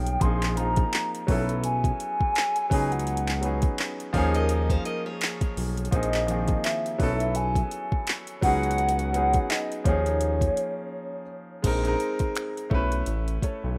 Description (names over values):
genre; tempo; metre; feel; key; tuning
contemporary R&B; 84 BPM; 4/4; swing 58% on 16ths; Bb minor; A4 = 440 Hz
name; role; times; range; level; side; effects
hollow clarinet-like synth lead; melody; 0.0-11.3 s; Db5 to C6; -30 LUFS; equal; chorus, digital delay
clear grand piano; accompaniment; 0.0-13.8 s; Eb3 to C#5; -32 LUFS; equal; none
smooth synth bass; bass; 0.0-13.8 s; A1 to Eb2; -29 LUFS; equal; none
smooth R&B drum kit; drums; 0.1-13.6 s; crash cymbal, finger snaps, handclaps, hi-hat, kick drum; -30 LUFS; equal; overdrive
picked steel-string acoustic guitar; arpeggios; 4.1-5.9 s; Ab4 to F5; -35 LUFS; equal; digital delay
room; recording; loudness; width
digital ambience; rough home demo mix; -26 LUFS; mono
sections
0.0-11.6 A section; 11.6-13.8 B section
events
break 10.9-11.6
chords
0.2 Bb9sus4; 1.3 B9sus4; 2.7 Db9sus4; 4.1 Eb9sus4; 5.9 Bb9sus4; 7.0 B9sus4; 8.4 Db9sus4; 9.9 Eb9sus4; 11.6 Bb9sus4; 12.7 B9sus4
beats
| 0.21 0.93 1.64 2.35 | 3.07 3.78 4.50 5.21 | 5.92 6.64 7.35 8.07 | 8.78 9.50 10.21 10.93 | 11.64 12.35 13.07